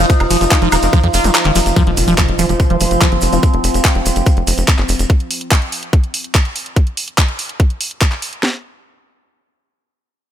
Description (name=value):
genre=psychedelic trance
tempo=144 BPM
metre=4/4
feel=straight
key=unclear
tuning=A4 = 435 Hz
part: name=overtone-sweeping drone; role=sustained chords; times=0.0-5.1 s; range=F3 to Eb4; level=-22 LUFS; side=equal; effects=chorus, built-in reverb, sidechain pumping
part: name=liquid acid bass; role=riff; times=0.0-3.4 s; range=Eb3 to F4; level=-18 LUFS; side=moving between left 5 dB and right 4 dB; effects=phaser, auto-pan, cassette tape, sidechain pumping, ping-pong delay
part: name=tight sequencer bass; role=bass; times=0.0-5.1 s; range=Eb1 to F2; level=-17 LUFS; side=equal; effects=none
part: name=warbly tape-like pad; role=texture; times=0.0-3.4 s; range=F4 to Eb6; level=-21 LUFS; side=right 2 dB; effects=chorus, built-in reverb, sidechain pumping
part: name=garage drum kit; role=drums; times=0.1-8.5 s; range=kick drum, snare drum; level=-12 LUFS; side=equal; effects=overdrive
part: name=garage drum kit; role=drums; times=0.1-8.4 s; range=handclaps, hi-hat, ride cymbal, woodblock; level=-18 LUFS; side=right 1 dB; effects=overdrive
part: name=maracas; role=percussion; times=0.1-5.1 s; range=none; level=-26 LUFS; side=right 3 dB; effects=none
part: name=metallic wobble bass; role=second line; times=0.5-0.9 s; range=Bb3 to Eb4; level=-28 LUFS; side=left 4 dB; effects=none
part: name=impact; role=sound effects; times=1.8-3.4 s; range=none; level=-24 LUFS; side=equal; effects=none
room=light reverb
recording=none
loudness=-12 LUFS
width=side -10 dB against mid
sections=0.0-1.8 A section; 1.8-8.4 B section; 8.4-10.3 C section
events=drop 0.0-1.8; kick drops out 1.3-1.8; impact 1.8-3.4; filter sweep on acid bass 1.8-3.4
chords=0.0 F5; 8.4 N.C.